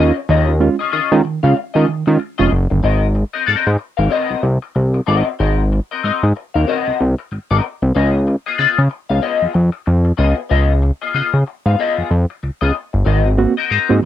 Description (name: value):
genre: funk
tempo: 94 BPM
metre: 4/4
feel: swing 60% on 16ths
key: Ab mixolydian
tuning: A4 = 439 Hz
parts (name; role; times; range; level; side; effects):
- clean electric guitar; accompaniment; 0.0-14.1 s; Cb4 to F5; -18 LUFS; left 7 dB; wah, analog chorus
- barky reed electric piano; stabs; 0.0-2.8, 13.1-14.1 s; Ab2 to Gb4; -16 LUFS; right 6 dB; overdrive, fast tremolo
- fat analog bass; bass; 0.0-14.0 s; F1 to Eb3; -14 LUFS; equal; none
room: little or no reverb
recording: dry, close 1970s-style studio recording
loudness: -14 LUFS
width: side -11 dB against mid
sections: 0.0-2.8 A section; 2.8-14.1 B section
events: none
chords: 0.0 Eb9sus4; 2.8 Ab9; 8.0 Db9; 13.1 Ab9